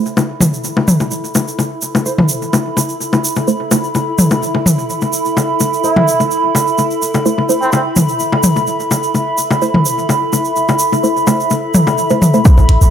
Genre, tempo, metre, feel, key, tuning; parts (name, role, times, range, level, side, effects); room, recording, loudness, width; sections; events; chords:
minimal techno; 127 BPM; 4/4; straight; A minor; A4 = 440 Hz
filtered dub chord stab; stabs; 0.0-12.4 s; A3 to C5; -18 LUFS; right 2 dB; phaser, cassette tape, tape echo
swarming drone; texture; 0.3-12.9 s; C4 to E4; -24 LUFS; left 2 dB; built-in reverb, sidechain pumping
warbly tape-like pad; texture; 0.0-12.9 s; A4 to B5; -18 LUFS; right 2 dB; chorus, built-in reverb, sidechain pumping
tube shaker; percussion; 0.1-12.9 s; -22 LUFS; right 3 dB
electronic bongos and toms; percussion; 0.2-12.7 s; -15 LUFS; left 2 dB; studio reverb, tape echo
trumpet with cup mute; melody; 5.8-7.8 s; C4 to E4; -18 LUFS; right 1 dB; tape echo
electronic kick drum; drums; 12.5-12.6 s; -7 LUFS; equal; studio reverb
punchy sub bass; bass; 12.6-12.9 s; A1; -8 LUFS; equal; sidechain pumping
electronic hi-hat; drums; 12.7-12.8 s; -21 LUFS; left 1 dB; low-pass filter on hats, studio reverb, low-pass filter on snare
moderate digital room reverb, RT60 0.9 s; -12 LUFS; side -9 dB against mid
0.0-12.5 A section
0.0 A5